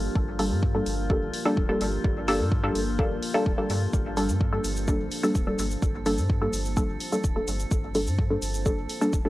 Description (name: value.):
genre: dub techno.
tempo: 127 BPM.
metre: 4/4.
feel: straight.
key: G minor.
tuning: A4 = 440 Hz.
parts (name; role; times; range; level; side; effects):
deep dark ambient pad; sustained chords; 0.0-9.3 s; Bb3 to C5; -36 LUFS; equal; chorus, built-in reverb, sidechain pumping.
pure sine sub bass; bass; 0.0-9.3 s; D1 to G2; -30 LUFS; equal; sidechain pumping.
drifting glass-harmonics texture; texture; 0.0-9.3 s; F3 to A4; -38 LUFS; equal; chorus, built-in reverb, sidechain pumping.
electronic kick drum; drums; 0.2-9.2 s; none; -26 LUFS; equal; none.
filtered dub chord stab; stabs; 0.4-9.3 s; G3 to A4; -27 LUFS; equal; chorus, phaser, sidechain pumping, dub echo.
electronic hi-hat and shaker; drums; 0.4-9.2 s; none; -36 LUFS; equal; none.
room: little or no reverb.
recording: dry, gritty hardware recording, cassette tape.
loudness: -23 LUFS.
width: side -17 dB against mid.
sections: 0.0-9.3 A section.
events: filter sweep on synth stab 0.0-9.3.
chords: 0.0 Gmadd9.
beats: | 0.15 0.63 1.10 1.57 | 2.04 2.52 2.99 3.46 | 3.93 4.41 4.88 5.35 | 5.82 6.30 6.77 7.24 | 7.71 8.19 8.66 9.13.